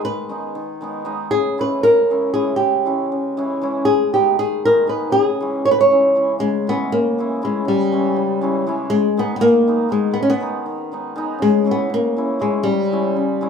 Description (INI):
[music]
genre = balkan folk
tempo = 238 BPM (eighths)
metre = 5/8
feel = straight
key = C# dorian sharp4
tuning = A4 = 440 Hz
[part]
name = flamenco guitar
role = melody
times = 0.0-13.5 s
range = G3 to C#5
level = -16 LUFS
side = left 1 dB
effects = plate reverb
[part]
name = hammered dulcimer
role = accompaniment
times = 0.0-13.5 s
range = C#3 to E4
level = -23 LUFS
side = equal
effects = plate reverb
[sound]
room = wet small room reverb, RT60 0.6 s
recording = rough home demo mix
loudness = -16 LUFS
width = side -6 dB against mid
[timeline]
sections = 0.0-6.4 A section; 6.4-13.5 A section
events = none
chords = 0.0 G#m; 1.3 C#m; 3.8 G#m; 5.1 C#m; 8.9 G#m; 11.4 C#m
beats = | 0.03 0.28 0.54 0.79 1.05 | 1.30 1.55 1.81 2.06 2.32 | 2.57 2.83 3.08 3.33 3.59 | 3.84 4.10 4.35 4.60 4.86 | 5.11 5.36 5.62 5.87 6.12 | 6.38 6.63 6.88 7.13 7.38 | 7.63 7.89 8.14 8.39 8.64 | 8.89 9.14 9.39 9.64 9.89 | 10.14 10.39 10.64 10.89 11.14 | 11.39 11.64 11.89 12.14 12.39 | 12.64 12.88 13.13 13.38